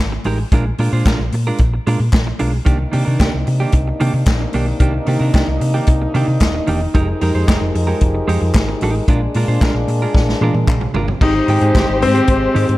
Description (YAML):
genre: disco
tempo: 112 BPM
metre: 4/4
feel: straight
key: C minor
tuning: A4 = 440 Hz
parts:
  - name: clean electric guitar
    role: accompaniment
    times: 0.0-12.7 s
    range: Eb3 to C5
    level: -22 LUFS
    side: right 3 dB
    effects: none
  - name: hollow-body short-scale fingered electric bass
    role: bass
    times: 0.0-12.8 s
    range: Eb1 to C3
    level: -18 LUFS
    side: equal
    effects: none
  - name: vintage drum kit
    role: drums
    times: 0.2-12.8 s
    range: crash cymbal, hi-hat, kick drum, snare drum, toms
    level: -17 LUFS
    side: equal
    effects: none
  - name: group handclap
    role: percussion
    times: 1.1-11.9 s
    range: none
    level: -31 LUFS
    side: left 3 dB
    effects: none
  - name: warm French horn section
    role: sustained chords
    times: 2.7-12.8 s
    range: C3 to Bb4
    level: -23 LUFS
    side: left 1 dB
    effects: none
  - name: clear concert grand piano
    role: melody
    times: 11.2-12.8 s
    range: C4 to Eb4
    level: -16 LUFS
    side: left 3 dB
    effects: none
  - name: dark studio string section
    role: second line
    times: 11.2-12.8 s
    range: Ab3 to C5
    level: -20 LUFS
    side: equal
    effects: none
room: small room ambience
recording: dark, warm production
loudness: -13 LUFS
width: side -17 dB against mid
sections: 0.0-11.2 A section; 11.2-12.8 B section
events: drum fill 10.1-11.2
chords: 0.0 Fm11 (rootless); 0.5 Bb7; 2.7 Cm9; 6.9 Fm11; 9.1 Bb7; 11.2 Abmaj7